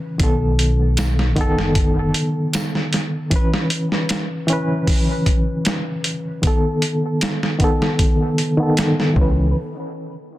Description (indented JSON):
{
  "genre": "trip hop",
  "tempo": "77 BPM",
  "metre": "4/4",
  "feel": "straight",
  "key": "unclear",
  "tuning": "A4 = 435 Hz",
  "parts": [
    { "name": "barky reed electric piano", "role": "accompaniment", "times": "0.0-9.6 s", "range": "D#3 to B4", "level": "-20 LUFS", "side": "equal", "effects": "fast tremolo, low-pass filter, tape echo" },
    { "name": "deep dub fingered electric bass", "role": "bass", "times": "0.2-2.1, 9.2-9.5 s", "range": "F#1 to C#2", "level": "-19 LUFS", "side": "equal", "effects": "none" },
    { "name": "boom bap sampler-style drum kit", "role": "drums", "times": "0.2-9.3 s", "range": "hi-hat, kick drum, snare drum", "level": "-20 LUFS", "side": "equal", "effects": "soft clipping on snare" },
    { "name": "tambourine", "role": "percussion", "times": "1.0-2.7 s", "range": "none", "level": "-33 LUFS", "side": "right 3 dB", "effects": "none" }
  ],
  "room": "little or no reverb",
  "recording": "dense, heavily limited modern master",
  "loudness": "-16 LUFS",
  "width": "side -15 dB against mid",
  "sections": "0.0-9.5 A section",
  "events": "filter sweep on reed electric piano 0.0-9.5",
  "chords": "0.2 B7; 3.3 C#m7; 6.4 B7; 9.2 C#m7; 9.5 N.C."
}